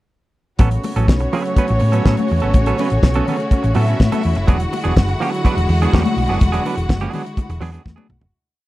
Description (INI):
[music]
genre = disco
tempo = 124 BPM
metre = 4/4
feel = straight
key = unclear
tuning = A4 = 441 Hz
[part]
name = rich studio violin section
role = second line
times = 0.6-8.3 s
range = C#4 to F#5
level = -24 LUFS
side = equal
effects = none
[part]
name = clean electric guitar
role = accompaniment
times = 0.6-8.3 s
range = F#3 to B4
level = -22 LUFS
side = right 5 dB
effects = none
[part]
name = rich studio string section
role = sustained chords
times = 0.6-8.3 s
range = C#3 to F#4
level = -25 LUFS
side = left 1 dB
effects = none
[part]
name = hollow-body short-scale fingered electric bass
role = bass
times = 0.6-8.3 s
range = E1 to A2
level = -18 LUFS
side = equal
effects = none
[part]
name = damped 70s drum kit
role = drums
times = 0.6-8.3 s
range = hi-hat, kick drum, snare drum, toms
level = -14 LUFS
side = equal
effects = none
[part]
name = congas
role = percussion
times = 0.6-8.1 s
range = none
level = -24 LUFS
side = left 6 dB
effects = none
[sound]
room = little or no reverb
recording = dry, close 1970s-style studio recording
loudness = -15 LUFS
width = side -17 dB against mid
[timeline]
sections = 0.6-8.3 pre-chorus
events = fade-out 6.4-8.3; drum fill 7.9-8.3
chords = 0.6 A69; 4.5 E9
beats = | 0.60 1.09 1.57 2.06 | 2.55 3.03 3.52 4.00 | 4.49 4.97 5.45 5.93 | 6.41 6.89 7.37 7.85